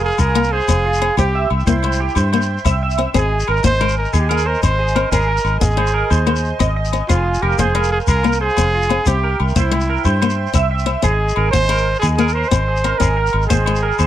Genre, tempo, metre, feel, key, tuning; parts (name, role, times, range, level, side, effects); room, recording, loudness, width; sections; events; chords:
highlife guitar band; 122 BPM (dotted quarters); 12/8; straight; A4 = 443 Hz
warm trumpet; melody; 0.0-14.1 s; E4 to C5; -20 LUFS; right 2 dB
picked steel-string acoustic guitar; accompaniment; 0.0-13.9 s; Ab3 to C4; -21 LUFS; left 7 dB
accordion; sustained chords; 0.0-14.1 s; Eb5 to C6; -31 LUFS; right 1 dB; light tremolo tuning
clean electric guitar; arpeggios; 0.0-14.1 s; F4 to E5; -22 LUFS; right 6 dB; analog chorus, tape echo
fingered electric bass; bass; 0.0-14.1 s; F1 to G2; -18 LUFS; equal
shekere; percussion; 0.1-14.1 s; -21 LUFS; left 1 dB
agogo bells; percussion; 0.2-14.1 s; -27 LUFS; left 24 dB
little or no reverb; dry, close 1970s-style studio recording; -14 LUFS; side -12 dB against mid
0.0-14.1 A section
0.0 Fm; 1.2 C; 3.2 Ab; 7.1 Fm; 9.1 C; 11.0 Ab